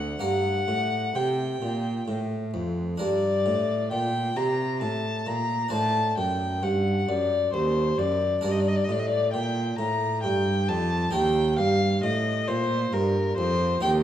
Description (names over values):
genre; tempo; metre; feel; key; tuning
classical, baroque-style sonata movement with continuo; 66 BPM; 3/4; straight; G minor; A4 = 439 Hz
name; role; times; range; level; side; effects
warm violin; melody; 0.0-13.9 s; Bb4 to Bb5; -27 LUFS; left 3 dB; none
harpsichord; accompaniment; 0.0-14.0 s; D2 to C5; -28 LUFS; right 1 dB; none
rich cello; bass; 0.0-14.0 s; D2 to C3; -28 LUFS; right 2 dB; none
room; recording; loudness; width
wet recital hall reverb, RT60 1.7 s; none; -23 LUFS; side -10 dB against mid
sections
0.0-3.0 A section; 3.0-14.0 B section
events
none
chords
0.2 Gm; 5.7 D7; 8.4 Gm; 11.1 Eb